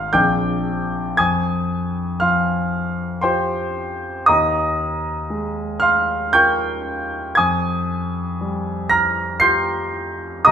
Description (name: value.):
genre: classical, impressionist solo piano.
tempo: 58 BPM.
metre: 3/4.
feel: rubato.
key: unclear.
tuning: A4 = 441 Hz.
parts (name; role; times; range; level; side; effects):
warm grand piano; solo; 0.0-10.5 s; Ab1 to C7; -17 LUFS; equal; none.
room: moderate recital hall reverb, RT60 1.4 s.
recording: minimal, uncompressed stereo recording.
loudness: -17 LUFS.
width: side -8 dB against mid.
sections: 0.0-10.5 A section.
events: none.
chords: 0.1 Bb9; 1.2 Fmadd9; 4.3 Eb9sus4; 7.4 Fmadd9.